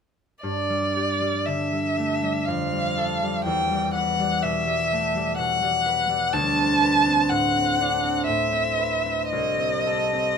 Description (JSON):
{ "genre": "classical, impressionist duo for violin and harp", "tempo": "61 BPM", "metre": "3/4", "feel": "uneven beats, rubato", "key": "G major", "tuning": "A4 = 437 Hz", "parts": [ { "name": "rich violin", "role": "melody", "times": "0.4-10.4 s", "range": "D5 to A5", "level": "-22 LUFS", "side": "left 1 dB", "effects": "none" }, { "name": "concert harp", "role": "accompaniment", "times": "0.4-10.4 s", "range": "C2 to B4", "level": "-25 LUFS", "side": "right 1 dB", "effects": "none" } ], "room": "light reverb", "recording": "close, detailed microphones", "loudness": "-21 LUFS", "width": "side -6 dB against mid", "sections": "0.4-10.4 A section", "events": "none", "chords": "0.4 G5; 2.5 Fadd9; 3.4 Emadd9; 6.3 D13; 9.3 Cm6", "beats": "| 0.43 1.45 2.46 | 3.45 4.43 5.39 | 6.32 7.29 8.27 | 9.31" }